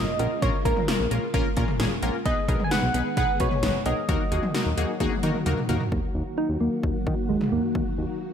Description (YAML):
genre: synth-pop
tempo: 131 BPM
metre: 4/4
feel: straight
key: Eb minor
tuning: A4 = 440 Hz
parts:
  - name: soft struck synth lead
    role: melody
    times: 0.0-8.0 s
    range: Ab3 to Ab5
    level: -28 LUFS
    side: right 1 dB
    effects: chorus, phaser, digital delay
  - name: funky polysynth comp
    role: accompaniment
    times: 0.0-5.8 s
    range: Bb3 to Cb5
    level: -30 LUFS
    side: left 2 dB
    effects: chorus
  - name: ensemble organ-string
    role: sustained chords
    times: 0.0-8.3 s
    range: Db3 to Ab4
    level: -32 LUFS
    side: left 1 dB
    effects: ensemble chorus
  - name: fat analog bass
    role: bass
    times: 0.0-8.1 s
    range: Bb1 to Eb3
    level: -27 LUFS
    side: equal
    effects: none
  - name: 80s electronic pad drums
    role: drums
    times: 0.2-7.9 s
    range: cowbell, hi-hat, kick drum, snare drum, toms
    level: -27 LUFS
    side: equal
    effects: gated reverb on snare and toms, overdrive, gated reverb
room: light reverb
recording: none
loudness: -22 LUFS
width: side -8 dB against mid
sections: 0.0-5.9 A section; 5.9-8.3 B section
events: drum fill 5.0-5.9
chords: 0.0 Bbm7; 2.3 Abm/Cb; 4.1 Ebm